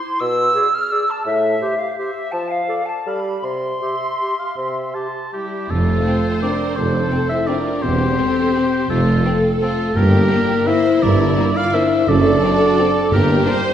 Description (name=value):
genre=classical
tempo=150-186 BPM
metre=3/4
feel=rubato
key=C major, F major from 5.7 s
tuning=A4 = 438 Hz
part: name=small flute group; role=second line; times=0.0-5.3 s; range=E5 to F6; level=-20 LUFS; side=equal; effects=none
part: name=warm bassoon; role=accompaniment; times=0.2-4.9 s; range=A2 to G3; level=-24 LUFS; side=equal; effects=none
part: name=clear clarinet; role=second line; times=0.5-5.5 s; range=G4 to A4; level=-28 LUFS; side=left 1 dB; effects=none
part: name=warm oboe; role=second line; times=0.6-13.6 s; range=G4 to A5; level=-23 LUFS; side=equal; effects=none
part: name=rich studio violin section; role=second line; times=5.3-13.6 s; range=E4 to D5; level=-25 LUFS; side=left 1 dB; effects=none
part: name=mellow French horn section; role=sustained chords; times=5.3-13.6 s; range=G3 to F4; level=-20 LUFS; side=left 2 dB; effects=none
part: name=rich studio viola section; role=accompaniment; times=5.7-13.7 s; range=D4 to C5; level=-24 LUFS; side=right 1 dB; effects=none
part: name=clear studio cello section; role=bass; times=5.7-13.4 s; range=E2 to G2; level=-23 LUFS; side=right 2 dB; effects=none
part: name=mellow tuba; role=bass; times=5.7-13.4 s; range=E1 to G1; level=-24 LUFS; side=right 2 dB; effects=none
part: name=rich studio double bass section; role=bass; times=5.7-13.4 s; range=E1 to G1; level=-23 LUFS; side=right 1 dB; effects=none
part: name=rich studio violin section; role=melody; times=6.1-13.5 s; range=Bb3 to D4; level=-28 LUFS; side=left 3 dB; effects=none
part: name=timpani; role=percussion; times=10.0-10.5, 13.1-13.6 s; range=G2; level=-24 LUFS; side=left 1 dB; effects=none
room=wet scoring stage reverb, RT60 1.5 s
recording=heard from further back in the room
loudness=-15 LUFS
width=side -10 dB against mid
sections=0.0-5.7 A section; 5.7-13.7 B section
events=none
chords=0.2 E7/B; 1.3 Am7; 2.3 Dm/F (rootless); 3.1 G9; 3.4 C; 5.7 F; 7.8 C/E; 8.9 F; 10.0 Gm; 12.1 D/F#; 13.1 Gm